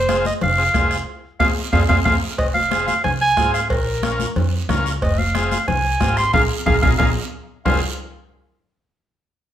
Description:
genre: latin, cumbia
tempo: 182 BPM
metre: 4/4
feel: straight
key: F minor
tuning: A4 = 440 Hz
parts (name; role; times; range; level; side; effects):
- warm clarinet; melody; 0.0-7.8 s; Bb4 to C6; -19 LUFS; right 1 dB; none
- upright bass; bass; 0.0-7.8 s; F1 to F2; -23 LUFS; right 1 dB; none
- combo organ; accompaniment; 0.1-7.8 s; C4 to Bb4; -25 LUFS; left 2 dB; none
- bombo; percussion; 0.1-7.7 s; none; -23 LUFS; equal; none
- congas; percussion; 0.1-7.7 s; none; -26 LUFS; left 4 dB; none
- cowbell and timbales; percussion; 0.1-7.7 s; none; -28 LUFS; right 2 dB; none
- guiro; percussion; 0.1-7.7 s; none; -33 LUFS; right 5 dB; none
room: moderate large studio reverb, RT60 0.9 s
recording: band playing live in one room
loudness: -16 LUFS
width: side -10 dB against mid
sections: 0.0-2.4 A section; 2.4-7.7 B section; 7.7-9.0 C section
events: band accent 1.1-2.4, 6.3-7.7; drum fill 1.7-2.4, 6.8-7.7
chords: 0.0 Fm; 3.7 Bbm; 5.0 Fm; 6.3 Bb5; 7.7 Fm

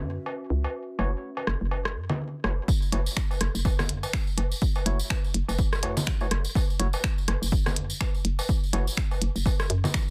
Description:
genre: minimal techno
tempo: 124 BPM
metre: 4/4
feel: swing 58% on 16ths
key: F# minor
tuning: A4 = 440 Hz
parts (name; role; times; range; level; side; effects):
- hollow knocking FM bass; bass; 0.0-9.9 s; F#1 to F#2; -30 LUFS; equal; sidechain pumping
- warbly tape-like pad; texture; 0.0-2.7 s; C#4 to E5; -44 LUFS; equal; chorus, built-in reverb, sidechain pumping
- electronic woodblock, rim click and congas; percussion; 0.3-9.9 s; none; -35 LUFS; equal; soft clipping on snare, digital delay
- percussive organ stab; stabs; 1.0-8.9 s; A3 to C#5; -38 LUFS; equal; chorus, digital delay
- electronic kick drum; drums; 2.7-10.1 s; none; -29 LUFS; equal; none
- tambourine; percussion; 2.7-10.1 s; none; -40 LUFS; equal; none
- minimal click drum kit; drums; 2.9-10.1 s; finger snaps, hi-hat; -33 LUFS; equal; overdrive, soft clipping on snare
room: little or no reverb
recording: dense, heavily limited modern master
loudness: -27 LUFS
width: mono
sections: 0.0-2.7 A section; 2.7-10.1 B section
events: drop 2.7-10.1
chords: 0.0 F#m7

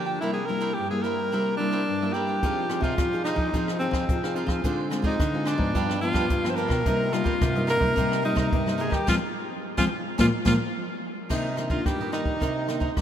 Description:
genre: samba and choro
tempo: 108 BPM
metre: 4/4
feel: straight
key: unclear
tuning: A4 = 440 Hz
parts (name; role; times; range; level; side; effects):
- bright alto saxophone; melody; 0.0-13.0 s; C4 to C5; -27 LUFS; equal; none
- cavaquinho; accompaniment; 0.0-12.9 s; D4 to G5; -35 LUFS; right 5 dB; none
- nylon-string guitar; accompaniment; 0.0-13.0 s; G2 to Ab4; -29 LUFS; left 1 dB; none
- nylon-string guitar; bass; 2.4-13.0 s; G2 to Ab3; -29 LUFS; equal; none
- jazz brush drum kit; drums; 2.4-13.0 s; crash cymbal, hi-hat, kick drum, rim click, snare drum; -29 LUFS; equal; none
room: wet cathedral reverb, RT60 6.2 s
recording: in a vast, echoing space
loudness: -23 LUFS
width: side -10 dB against mid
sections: 0.0-11.3 A section; 11.3-13.0 B section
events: band accent 9.1-11.3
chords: 0.2 C7; 2.4 Fm7; 4.6 Dm7b5; 5.7 G7; 6.9 Cm7; 9.1 Fm; 10.2 Bb7; 11.3 Cm9

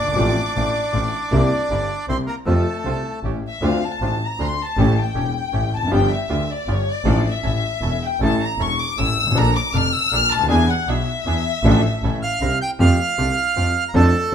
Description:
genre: tango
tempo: 157 BPM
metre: 3/4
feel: rubato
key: F major, D harmonic minor from 3.6 s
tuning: A4 = 441 Hz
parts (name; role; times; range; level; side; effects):
- bandoneon; melody; 0.0-3.2, 12.2-14.3 s; A3 to G6; -22 LUFS; right 2 dB; none
- dark chamber violin section; second line; 0.0-12.4 s; C#5 to F6; -23 LUFS; left 4 dB; none
- warm concert grand piano; accompaniment; 0.0-14.3 s; E1 to A4; -22 LUFS; left 2 dB; none
- clear double bass; bass; 0.0-14.3 s; E1 to F2; -22 LUFS; right 1 dB; none
- bandoneon; stabs; 0.2-14.3 s; A3 to Bb4; -31 LUFS; right 7 dB; none
room: light reverb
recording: minimal, uncompressed stereo recording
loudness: -17 LUFS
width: side -8 dB against mid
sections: 0.0-3.6 A section; 3.6-12.8 B section; 12.8-14.3 C section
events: violin section solo 3.6-12.8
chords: 0.2 F/A; 1.3 C7; 2.5 F; 3.2 A7; 3.6 Dm7; 4.8 A7; 5.9 G7; 7.1 Dm/A; 7.4 A; 9.4 Bbmaj7; 10.5 E7; 11.6 Dm/A; 12.0 A; 12.4 C7; 12.8 Fadd9

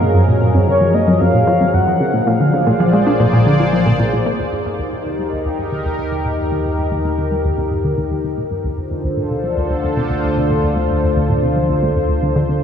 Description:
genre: ambient, sequencer-driven space music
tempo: 113 BPM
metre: 4/4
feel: straight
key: unclear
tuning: A4 = 441 Hz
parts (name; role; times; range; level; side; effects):
- sweeping resonant pad; sustained chords; 0.0-12.6 s; D3 to D5; -18 LUFS; left 1 dB; chorus
- plucky analog bass; riff; 0.0-12.6 s; D2 to D4; -18 LUFS; equal; analog delay
- analog drone; bass; 0.0-12.6 s; Bb1 to Gb2; -22 LUFS; equal; chorus
- mellow horn-like synth lead; melody; 0.7-3.9 s; Db5 to Gb5; -20 LUFS; left 1 dB; chorus, analog delay
room: wet huge ambient reverb, RT60 7.9 s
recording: studio reverb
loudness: -14 LUFS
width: side -8 dB against mid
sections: 0.0-4.4 A section; 4.4-12.6 B section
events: filter sweep on analog synth bass 0.0-4.4, 4.4-12.6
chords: 0.0 Gbmaj7; 2.3 Bb7; 4.4 Eb; 8.6 Dm7

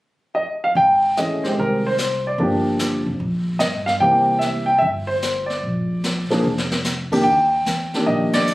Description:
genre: jazz piano trio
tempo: 148 BPM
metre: 4/4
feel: swing 67% on 8ths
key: Eb major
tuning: A4 = 442 Hz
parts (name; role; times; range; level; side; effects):
- warm upright piano; melody; 0.3-8.5 s; Eb3 to G5; -18 LUFS; equal; none
- upright bass; bass; 0.8-8.5 s; F1 to G2; -26 LUFS; equal; none
- jazz brush drum kit; drums; 0.8-8.5 s; brushed snare drum, crash cymbal, hi-hat, kick drum, ride cymbal, snare drum; -27 LUFS; left 1 dB; none
room: light reverb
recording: recorded on a phone in the room, studio reverb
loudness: -17 LUFS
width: side -18 dB against mid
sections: 0.8-7.3 A section; 7.3-8.5 B section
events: drum fill 6.5-6.9; band accent 8.3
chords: 0.0 N.C.; 0.8 Abmaj7; 2.4 Gm7; 4.0 C7; 5.6 Bb; 7.3 Ebmaj7

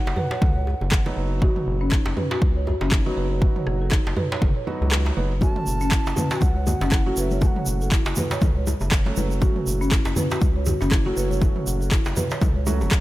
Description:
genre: afro house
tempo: 120 BPM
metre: 4/4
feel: swing 57% on 16ths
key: F# dorian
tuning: A4 = 441 Hz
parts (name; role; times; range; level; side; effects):
- breathy bright bass bansuri; melody; 0.0-1.2, 5.4-7.9 s; E5 to A5; -33 LUFS; right 1 dB; tape echo
- folk marimba with soft mallets; arpeggios; 0.0-12.7 s; C#4 to F#5; -29 LUFS; left 1 dB; sidechain pumping, tape echo
- felt-muted upright piano; stabs; 0.0-13.0 s; F#3 to F#4; -31 LUFS; right 4 dB; sidechain pumping, tape echo
- round analog bass; bass; 0.1-12.9 s; F#1 to C#2; -25 LUFS; equal; sidechain pumping
- djembe; percussion; 0.1-12.9 s; none; -31 LUFS; right 1 dB; none
- house drum kit; drums; 0.2-13.0 s; handclaps, rim click, toms; -28 LUFS; equal; overdrive
- electronic kick drum; drums; 0.4-13.0 s; none; -20 LUFS; equal; overdrive
- congas; percussion; 5.4-12.8 s; none; -30 LUFS; left 3 dB; none
- egg shaker; percussion; 5.4-13.0 s; none; -35 LUFS; right 4 dB; none
room: small room ambience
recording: none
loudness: -19 LUFS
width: side -16 dB against mid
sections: 0.0-13.0 A section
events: kick drops out 4.9-5.4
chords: 0.0 B/F#; 5.4 F#m

